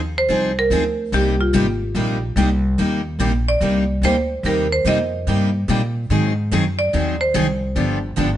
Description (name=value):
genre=acoustic string swing (jazz manouche)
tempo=145 BPM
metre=4/4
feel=swing 63% on 8ths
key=C minor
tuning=A4 = 441 Hz
part: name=upright bass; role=bass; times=0.0-8.4 s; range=G1 to Bb2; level=-21 LUFS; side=equal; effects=none
part: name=marimba with hard mallets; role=melody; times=0.2-7.7 s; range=F4 to Eb5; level=-21 LUFS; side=right 2 dB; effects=none
part: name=picked steel-string acoustic guitar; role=accompaniment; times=0.3-8.3 s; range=C3 to Ab4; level=-22 LUFS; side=left 5 dB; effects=none
part: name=picked steel-string acoustic guitar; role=accompaniment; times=0.3-8.3 s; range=C3 to Ab4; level=-25 LUFS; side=right 6 dB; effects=none
room=light reverb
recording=nothing above 10.6 kHz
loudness=-17 LUFS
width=side -12 dB against mid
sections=0.0-8.4 A section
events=none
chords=0.0 Fm7; 1.1 Cm7; 6.1 Ab7; 7.8 G7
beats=0.30 0.71 | 1.13 1.54 1.96 2.37 | 2.79 3.20 3.62 4.03 | 4.45 4.86 5.28 5.69 | 6.11 6.52 6.93 7.35 | 7.76 8.18